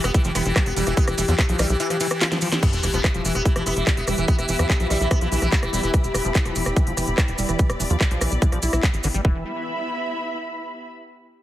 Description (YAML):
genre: psychedelic trance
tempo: 145 BPM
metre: 4/4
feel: straight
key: E phrygian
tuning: A4 = 440 Hz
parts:
  - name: sitar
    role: melody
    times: 0.0-5.9 s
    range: E3 to B3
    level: -28 LUFS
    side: equal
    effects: phaser, sidechain pumping, tape echo
  - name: evolving wavetable pad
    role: sustained chords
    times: 0.0-9.3 s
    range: G4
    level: -30 LUFS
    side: left 3 dB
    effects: chorus, built-in reverb, sidechain pumping
  - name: liquid acid bass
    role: riff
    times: 0.0-9.4 s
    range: D3 to F4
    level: -30 LUFS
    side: moving between left 3 dB and right 6 dB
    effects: chorus, auto-pan, sidechain pumping, tape echo
  - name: tight sequencer bass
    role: bass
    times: 0.0-9.4 s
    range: E1 to E2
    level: -24 LUFS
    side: equal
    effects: none
  - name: drum and bass drum kit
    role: drums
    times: 0.0-9.2 s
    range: crash cymbal, handclaps, hi-hat, ride cymbal, rim click, snare drum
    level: -26 LUFS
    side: equal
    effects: none
  - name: maracas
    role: percussion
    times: 0.0-9.2 s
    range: none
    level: -32 LUFS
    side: right 3 dB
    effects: none
  - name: electronic kick drum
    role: drums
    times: 0.1-9.3 s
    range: none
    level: -19 LUFS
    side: equal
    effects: none
  - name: sub drop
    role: sound effects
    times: 2.7-4.3 s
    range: none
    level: -31 LUFS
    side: equal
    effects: none
  - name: muted studio string section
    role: texture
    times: 2.6-10.9 s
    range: B3 to B5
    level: -30 LUFS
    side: equal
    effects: sidechain pumping
room: light reverb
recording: heavily compressed radio sound, multiband compression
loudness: -19 LUFS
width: side -14 dB against mid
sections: 0.0-2.6 A section; 2.6-9.2 B section; 9.2-10.9 C section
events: drop 0.0-2.6; drum fill 2.2-2.6; band accent 2.5; impact 2.6-4.3; filter sweep on analog synth bass 2.6-9.2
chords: 0.0 E5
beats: 0.14 0.56 | 0.97 1.39 1.80 2.21 | 2.63 3.04 3.46 3.87 | 4.28 4.70 5.11 5.52 | 5.94 6.35 6.76 7.18 | 7.59 8.01 8.42 8.83 | 9.25 9.66 10.07 10.49